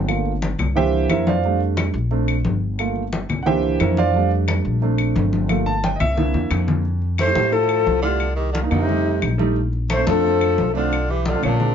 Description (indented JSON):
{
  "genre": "Afro-Cuban jazz",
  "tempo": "177 BPM",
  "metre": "4/4",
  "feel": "straight",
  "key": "F major",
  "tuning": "A4 = 444 Hz",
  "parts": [
    { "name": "warm concert grand piano", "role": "accompaniment", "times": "0.0-11.7 s", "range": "E3 to A5", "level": "-22 LUFS", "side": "right 5 dB", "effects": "none" },
    { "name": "upright bass", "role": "bass", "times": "0.0-11.7 s", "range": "G1 to F2", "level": "-22 LUFS", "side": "left 1 dB", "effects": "none" },
    { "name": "claves", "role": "percussion", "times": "0.1-11.6 s", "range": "none", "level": "-29 LUFS", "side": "left 7 dB", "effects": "none" },
    { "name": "congas", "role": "percussion", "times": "0.1-11.7 s", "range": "none", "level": "-25 LUFS", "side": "left 3 dB", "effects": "none" },
    { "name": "breathy mellow jazz flute", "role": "melody", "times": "7.2-11.7 s", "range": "D4 to C5", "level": "-21 LUFS", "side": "left 6 dB", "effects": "none" },
    { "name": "bright tenor saxophone", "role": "second line", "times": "7.2-11.7 s", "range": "Bb2 to A3", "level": "-26 LUFS", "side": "right 4 dB", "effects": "none" }
  ],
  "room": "light reverb",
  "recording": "nothing above 7.6 kHz",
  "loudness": "-17 LUFS",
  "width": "side -8 dB against mid",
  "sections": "0.0-6.8 A section; 6.8-11.7 B section",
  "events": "grand piano solo 0.0-6.8; drum fill 5.5-6.8",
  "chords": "0.1 Gm7; 0.8 C7; 1.4 F6; 2.1 Bbmaj7; 2.8 Gm7; 3.5 C7; 4.1 F6; 4.8 Bbmaj7; 5.5 Gm7; 6.2 C7; 6.8 Fmaj7; 8.2 Cm9; 8.9 F7; 9.6 Bbmaj9; 10.9 Bm7b5",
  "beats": "| 0.08 0.42 0.76 1.10 | 1.44 1.77 2.11 2.45 | 2.79 3.13 3.46 3.80 | 4.14 4.48 4.82 5.16 | 5.49 5.83 6.17 6.51 | 6.85 7.19 7.53 7.87 | 8.20 8.54 8.88 9.22 | 9.56 9.90 10.24 10.58 | 10.92 11.26 11.60"
}